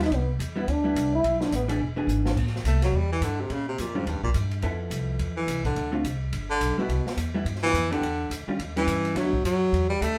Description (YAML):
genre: jazz, small-group swing and bop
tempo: 212 BPM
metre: 4/4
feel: swing 60% on 8ths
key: A minor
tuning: A4 = 441 Hz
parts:
  - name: trombone with bucket mute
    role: melody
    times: 0.0-1.6 s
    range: B3 to E4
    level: -27 LUFS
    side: equal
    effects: none
  - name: vintage hollow-body jazz guitar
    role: accompaniment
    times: 0.0-9.3 s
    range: D3 to A4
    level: -32 LUFS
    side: equal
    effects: none
  - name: upright bass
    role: bass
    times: 0.0-10.2 s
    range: E1 to Bb2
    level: -30 LUFS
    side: equal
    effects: none
  - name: open jazz drum kit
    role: drums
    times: 0.0-10.1 s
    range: crash cymbal, hi-hat, kick drum, ride cymbal, snare drum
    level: -38 LUFS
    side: equal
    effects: none
  - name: clear baritone saxophone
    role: second line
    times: 2.7-10.2 s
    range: G2 to A3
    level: -29 LUFS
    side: equal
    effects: none
room: wet studio ambience, RT60 0.5 s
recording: band playing live in one room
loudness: -26 LUFS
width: mono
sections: 0.0-2.4 A section; 2.4-10.2 A section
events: trombone solo 0.0-2.4; drum fill 2.1; baritone saxophone solo 2.4-10.2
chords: 0.1 Cmaj7; 1.2 Asus24; 1.8 E7; 2.4 Am7; 3.5 Bbm; 4.1 D#7; 4.6 Fmaj7#11; 5.8 Dm7; 6.3 G; 6.9 Cmaj7; 8.0 Em7; 8.6 D#7; 9.2 D69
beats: | 0.11 0.40 0.68 0.96 | 1.24 1.52 1.80 2.09 | 2.37 2.65 2.93 3.22 | 3.50 3.78 4.06 4.34 | 4.63 4.91 5.19 5.48 | 5.76 6.04 6.33 6.61 | 6.89 7.18 7.46 7.74 | 8.03 8.31 8.60 8.88 | 9.16 9.45 9.73 10.02